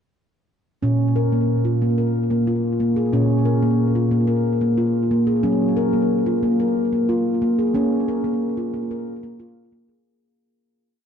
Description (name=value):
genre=world meditative, meditative tuned percussion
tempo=182 BPM (eighths)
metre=7/8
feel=straight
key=Bb minor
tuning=A4 = 443 Hz
part: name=handpan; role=solo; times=0.8-10.1 s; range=Bb2 to Bb4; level=-18 LUFS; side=equal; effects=ping-pong delay
room=wet cathedral reverb, RT60 6.2 s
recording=dark, warm production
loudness=-18 LUFS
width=side -8 dB against mid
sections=0.8-10.1 A section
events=fade-out 7.7-10.1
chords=0.8 Bbm; 5.4 Gb; 7.7 Bbm